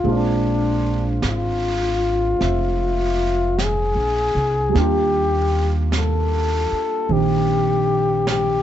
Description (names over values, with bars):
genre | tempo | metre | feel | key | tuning
jazz ballad | 51 BPM | 4/4 | swing 67% on 8ths | unclear | A4 = 442 Hz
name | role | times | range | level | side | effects
breathy flugelhorn | melody | 0.0-8.6 s | D4 to A4 | -21 LUFS | left 3 dB | none
warm baby grand piano | accompaniment | 0.0-8.6 s | Eb3 to E5 | -25 LUFS | right 5 dB | none
upright bass | bass | 0.0-8.6 s | F1 to Eb2 | -22 LUFS | equal | none
jazz brush drum kit | drums | 0.0-8.6 s | brushed snare drum, hi-hat, snare drum | -30 LUFS | right 3 dB | none
room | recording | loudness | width
light reverb | dark, warm production, nothing above 7.9 kHz | -17 LUFS | side -11 dB against mid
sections
0.0-8.6 A section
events
none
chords
0.0 Bb9; 4.7 Ebmaj9